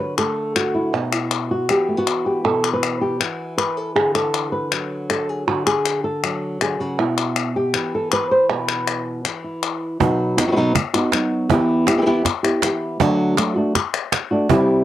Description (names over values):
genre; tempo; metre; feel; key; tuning
flamenco; 159 BPM; 4/4; straight; unclear; A4 = 440 Hz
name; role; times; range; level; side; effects
flamenco guitar; melody; 0.0-14.8 s; B2 to C5; -19 LUFS; equal; cassette tape
palmas hand claps; percussion; 0.2-14.7 s; none; -23 LUFS; left 3 dB; none
cajon; percussion; 10.0-14.8 s; none; -22 LUFS; right 6 dB; none
room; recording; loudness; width
wet booth ambience, RT60 0.2 s; home recording on cassette; -18 LUFS; side -12 dB against mid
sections
0.0-10.0 A section; 10.0-14.8 B section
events
none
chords
0.0 Dadd9; 0.9 Bsus4; 4.0 Dadd9; 7.0 Bsus4; 10.0 B; 11.5 Em; 13.0 D